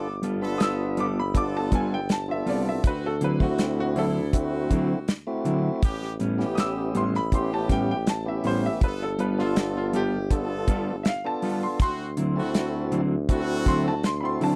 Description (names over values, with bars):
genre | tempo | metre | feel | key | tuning
straight-eighth soul blues | 80 BPM | 4/4 | straight | unclear | A4 = 440 Hz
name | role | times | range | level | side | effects
clear upright piano | second line | 0.0-14.6 s | E4 to E6 | -32 LUFS | equal | none
tonewheel organ | accompaniment | 0.0-14.6 s | A3 to B4 | -32 LUFS | equal | overdrive, stopped rotary speaker
brilliant horn section | sustained chords | 0.0-14.0 s | B3 to A4 | -38 LUFS | equal | none
warm tuba | bass | 0.0-14.6 s | G1 to D3 | -32 LUFS | equal | none
mellow electric guitar | stabs | 0.2-14.6 s | A2 to A4 | -29 LUFS | equal | none
warm soul drum kit | drums | 0.2-14.6 s | hi-hat, kick drum, snare drum | -26 LUFS | equal | none
room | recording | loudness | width
little or no reverb | dry, close 1970s-style studio recording | -25 LUFS | mono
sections
0.0-14.6 A section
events
upright piano solo 0.0-14.6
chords
0.0 G9; 2.8 D9; 5.8 A9; 8.8 G9; 11.8 D9